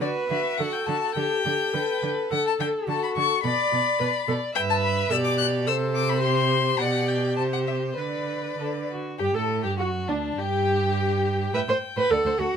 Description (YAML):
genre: quick classical-period movement for string quartet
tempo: 105 BPM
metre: 2/4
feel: rubato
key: D major, G major from 4.6 s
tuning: A4 = 442 Hz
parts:
  - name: rich violin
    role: melody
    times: 0.0-12.6 s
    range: D4 to F#6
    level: -27 LUFS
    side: left 8 dB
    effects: none
  - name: rich violin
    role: second line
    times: 0.0-12.5 s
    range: D4 to E5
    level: -29 LUFS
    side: left 4 dB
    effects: none
  - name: warm viola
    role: accompaniment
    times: 0.0-12.6 s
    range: D4 to D5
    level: -27 LUFS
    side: right 2 dB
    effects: none
  - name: clear cello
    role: bass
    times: 0.0-12.6 s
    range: D2 to D3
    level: -29 LUFS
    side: right 4 dB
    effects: none
room: moderate studio reverb, RT60 0.5 s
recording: none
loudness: -22 LUFS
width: side -7 dB against mid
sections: 0.0-9.2 A section; 9.2-12.6 B section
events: none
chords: 0.0 D; 3.4 Bm; 4.6 G; 5.1 G/B; 5.7 C5; 6.8 G/B; 7.4 C5; 8.0 Bm/D; 9.2 Gsus2; 9.8 D/F#; 10.4 N.C.; 11.5 Am7